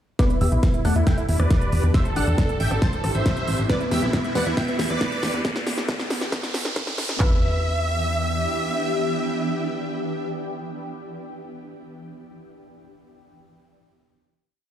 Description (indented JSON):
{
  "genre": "uplifting trance",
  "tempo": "137 BPM",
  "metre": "4/4",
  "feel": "straight",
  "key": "E minor",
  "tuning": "A4 = 440 Hz",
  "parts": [
    { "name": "supersaw chords", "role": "melody", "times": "0.2-10.3 s", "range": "E4 to A5", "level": "-29 LUFS", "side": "right 2 dB", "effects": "lush chorus, sidechain pumping, low-pass filter, digital delay" },
    { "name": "glassy wavetable pluck", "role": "second line", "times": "0.2-10.3 s", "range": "A3 to D5", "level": "-30 LUFS", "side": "left 1 dB", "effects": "chorus, digital delay" },
    { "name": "plucky unison lead", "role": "second line", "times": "0.2-10.3 s", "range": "E5 to A6", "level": "-35 LUFS", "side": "equal", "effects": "sidechain pumping, digital delay" },
    { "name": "shimmering ambient pad", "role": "sustained chords", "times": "0.9-10.3 s", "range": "E3 to G4", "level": "-30 LUFS", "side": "equal", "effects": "chorus, built-in reverb, phaser, sidechain pumping" },
    { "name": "big-room dance drum kit", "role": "drums", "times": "0.2-7.3 s", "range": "handclaps, kick drum", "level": "-22 LUFS", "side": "equal", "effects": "none" },
    { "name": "big-room dance drum kit", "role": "drums", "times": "0.2-7.2 s", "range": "hi-hat, rim click, snare drum", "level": "-30 LUFS", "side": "equal", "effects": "none" },
    { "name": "riser", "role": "sound effects", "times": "2.5-7.2 s", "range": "none", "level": "-34 LUFS", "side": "equal", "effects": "none" },
    { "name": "tight sequencer bass", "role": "bass", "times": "0.4-8.5 s", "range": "A1 to E2", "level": "-22 LUFS", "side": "equal", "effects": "sidechain pumping" }
  ],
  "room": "light reverb, digital ambience",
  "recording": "played on a big sound system in a bare room, stone room reverb, high-pass filter",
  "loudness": "-20 LUFS",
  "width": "side -10 dB against mid",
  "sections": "0.2-7.2 build; 7.2-10.7 final chord",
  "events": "build-up 0.2-7.2; drum fill 0.2-7.2; filter sweep on supersaw synth 0.2-5.4; filter sweep on digital synth lead 0.2-5.4; filter sweep 0.2-7.2; riser 2.5-7.2",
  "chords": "0.2 Em7; 1.9 Am; 3.7 Em7; 5.4 N.C.; 7.2 Em7"
}